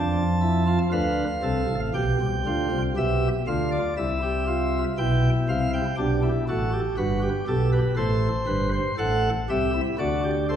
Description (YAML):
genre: classical, baroque-style 3-part fugue for pipe organ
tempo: 60 BPM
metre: 4/4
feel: straight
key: unclear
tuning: A4 = 440 Hz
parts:
  - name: pipe organ, sparkling flutes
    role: solo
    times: 0.0-10.6 s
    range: G1 to A5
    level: -22 LUFS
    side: equal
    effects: none
room: wet recital hall reverb, RT60 1.7 s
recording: heard from further back in the room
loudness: -22 LUFS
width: side -9 dB against mid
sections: 0.0-10.6 A section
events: none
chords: 0.0 Dm7/F; 1.9 G7/B; 4.0 C; 6.0 G; 8.0 Am7; 10.0 D7